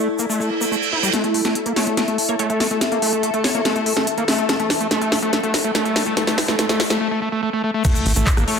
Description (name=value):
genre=psychedelic trance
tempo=143 BPM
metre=4/4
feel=straight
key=unclear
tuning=A4 = 440 Hz
part: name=evolving wavetable pad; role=sustained chords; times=0.0-8.6 s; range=E4 to A4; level=-26 LUFS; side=left 1 dB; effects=ensemble chorus, built-in reverb, phaser, vintage 12-bit sampler grit, sidechain pumping
part: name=screaming distorted acid line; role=riff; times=0.0-8.6 s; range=G3 to E4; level=-22 LUFS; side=equal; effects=distortion, chorus, auto-pan, sidechain pumping, tape echo
part: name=airy breathy pad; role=texture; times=0.0-8.6 s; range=E4 to E5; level=-28 LUFS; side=left 4 dB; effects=chorus, sidechain pumping
part: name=egg shaker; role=percussion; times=0.2-1.1, 7.8-8.5 s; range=none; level=-28 LUFS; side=equal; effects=none
part: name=reverse cymbal, riser and impact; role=sound effects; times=0.4-8.6 s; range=none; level=-28 LUFS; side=right 2 dB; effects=none
part: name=techno drum kit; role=drums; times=1.1-8.6 s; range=crash cymbal, handclaps, hi-hat, rim click, snare drum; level=-21 LUFS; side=equal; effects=low-pass filter on snare, low-pass filter on hats, low-pass filter on cymbals, low-pass filter on room
part: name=resonant blip pluck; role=second line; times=1.8-3.6, 8.5-8.6 s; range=C#5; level=-32 LUFS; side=left 1 dB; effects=phaser, sidechain pumping, high-pass filter, dub echo
part: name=electronic kick drum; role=drums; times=7.8-8.4 s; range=none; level=-18 LUFS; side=equal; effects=none
part: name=tight sequencer bass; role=bass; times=8.1-8.4 s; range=A1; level=-18 LUFS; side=equal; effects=tube saturation
room=moderate plate reverb, RT60 2.0 s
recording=none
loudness=-17 LUFS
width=side -6 dB against mid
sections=0.0-1.1 A section; 1.1-7.8 B section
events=filter sweep on acid bass 0.0-1.1, 1.1-7.8; reverse cymbal 0.4-1.1; build-up 1.1-7.8; drum fill 1.1-7.0; riser 1.1-7.0; break 7.0-7.8; impact 7.8-8.6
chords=0.0 A5